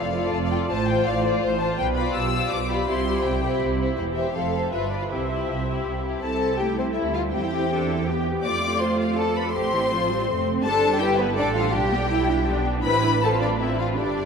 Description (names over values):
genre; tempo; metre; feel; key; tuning
quick classical-period movement for string orchestra; 163 BPM; 3/4; straight; C major; A4 = 439 Hz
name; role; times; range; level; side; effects
rich studio violin section; melody; 0.0-14.3 s; B4 to E6; -28 LUFS; left 6 dB; none
rich chamber violin section; second line; 0.0-14.3 s; B3 to D5; -26 LUFS; left 3 dB; none
rich chamber viola section; accompaniment; 0.0-14.3 s; E3 to E5; -28 LUFS; equal; none
rich chamber cello section; bass; 0.0-14.3 s; E2 to B4; -30 LUFS; right 8 dB; none
rich chamber double bass section; bass; 0.0-14.3 s; E1 to F2; -28 LUFS; right 4 dB; none
room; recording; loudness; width
wet cathedral reverb, RT60 6.6 s; in a vast, echoing space; -21 LUFS; side -6 dB against mid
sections
0.0-6.2 A section; 6.2-14.3 B section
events
none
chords
0.0 F; 0.7 F/A; 1.8 G7/B; 2.9 C; 4.0 C/E; 4.4 F; 4.7 G7; 5.1 C; 7.3 C/E; 8.4 F; 9.5 F/A; 10.6 G; 11.7 G/B; 12.9 F/A